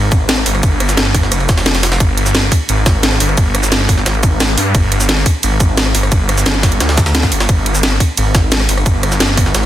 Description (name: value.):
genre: dark technical drum and bass.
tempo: 175 BPM.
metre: 4/4.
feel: straight.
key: unclear.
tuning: A4 = 440 Hz.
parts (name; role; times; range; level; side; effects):
wide detuned saw bass; bass; 0.0-9.7 s; F1 to G2; -14 LUFS; equal; chorus, overdrive, sidechain pumping.
drum and bass drum kit; drums; 0.1-9.6 s; cabasa, hi-hat, rim click, snare drum; -16 LUFS; equal; overdrive, studio reverb.
electronic kick drum; drums; 0.1-9.4 s; none; -13 LUFS; equal; overdrive, studio reverb.
jungle sampler-style drum kit; drums; 0.1-9.7 s; hi-hat, ride cymbal, snare drum; -21 LUFS; right 1 dB; high-pass filter on snare, studio reverb, high-pass filter on cymbals, high-pass filter on hats.
room: digital ambience.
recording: dense, heavily limited modern master.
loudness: -11 LUFS.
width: side -12 dB against mid.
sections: 0.0-9.7 A section.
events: none.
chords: none.